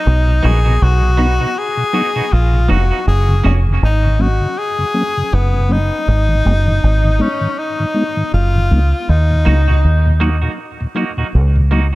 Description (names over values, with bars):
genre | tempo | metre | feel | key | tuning
reggae | 80 BPM | 4/4 | swing 58% on 16ths | Eb minor | A4 = 440 Hz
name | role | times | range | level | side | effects
bright tenor saxophone | melody | 0.0-9.8 s | Cb4 to Ab4 | -19 LUFS | left 2 dB | dub echo
deep dub fingered electric bass | bass | 0.1-11.9 s | F1 to Eb2 | -12 LUFS | equal | none
mellow tonewheel organ | accompaniment | 0.3-11.8 s | Eb2 to D#4 | -21 LUFS | left 1 dB | chorus vibrato, stopped rotary speaker, dub echo
semi-hollow electric guitar | accompaniment | 0.4-3.6, 9.4-11.9 s | Bb3 to F#4 | -24 LUFS | right 6 dB | harmonic tremolo, dub echo
room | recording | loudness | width
digital ambience | echo-heavy mix | -12 LUFS | side -19 dB against mid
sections
0.0-9.1 A section; 9.1-11.9 B section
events
none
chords
0.1 B; 3.1 Gb; 6.1 Ab5; 9.1 Ebm